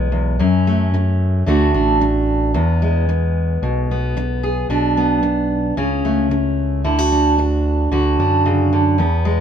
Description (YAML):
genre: acoustic folk duo or small band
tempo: 112 BPM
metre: 4/4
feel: straight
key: unclear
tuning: A4 = 440 Hz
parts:
  - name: fingerpicked steel-string acoustic guitar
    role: accompaniment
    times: 0.0-9.4 s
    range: E2 to G#4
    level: -17 LUFS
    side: right 1 dB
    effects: none
  - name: smooth gliding synth bass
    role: bass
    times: 0.0-9.4 s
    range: A1 to F#2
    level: -19 LUFS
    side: equal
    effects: none
room: moderate studio reverb, RT60 0.6 s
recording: none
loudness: -15 LUFS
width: side -8 dB against mid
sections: 0.0-9.4 A section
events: none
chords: 0.4 F#m; 1.5 D; 2.5 E; 4.7 Bm; 5.8 A/C#; 6.8 D; 7.9 Dmaj7